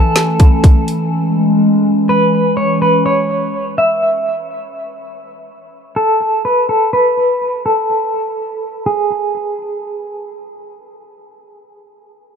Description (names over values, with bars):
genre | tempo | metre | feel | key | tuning
hip hop, atmospheric cloud-rap | 124 BPM | 4/4 | half-time | C# minor | A4 = 440 Hz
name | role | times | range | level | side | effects
clean electric guitar | melody | 0.0-10.3 s | G#4 to E5 | -15 LUFS | equal | tremolo, low-pass filter, tape echo
warbly tape-like pad | sustained chords | 0.0-3.0 s | E3 to G#5 | -14 LUFS | left 1 dB | chorus, built-in reverb, sidechain pumping, low-pass filter
trap drum kit | drums | 0.2-1.0 s | hi-hat, kick drum, snare drum | -8 LUFS | equal | none
room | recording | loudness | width
light reverb, digital ambience | dark, warm production | -12 LUFS | side -7 dB against mid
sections
0.0-8.9 A section; 8.9-12.4 B section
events
filter sweep 0.0-8.9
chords
0.0 Amaj7; 1.1 C#m; 5.0 N.C.